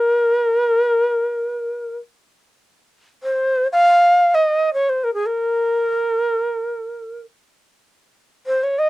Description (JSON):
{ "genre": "Arabic maqam ensemble", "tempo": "free time", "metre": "none", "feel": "none", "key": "unclear", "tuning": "A4 = 440 Hz", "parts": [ { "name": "breathy bright long shakuhachi", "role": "solo", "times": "0.0-8.9 s", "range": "Ab4 to F5", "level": "-16 LUFS", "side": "equal", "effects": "cassette tape" } ], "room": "wet booth ambience, RT60 0.2 s", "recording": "home recording on cassette", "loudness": "-16 LUFS", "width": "side -18 dB against mid", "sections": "0.0-8.9 A section", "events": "none", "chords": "none", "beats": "free time" }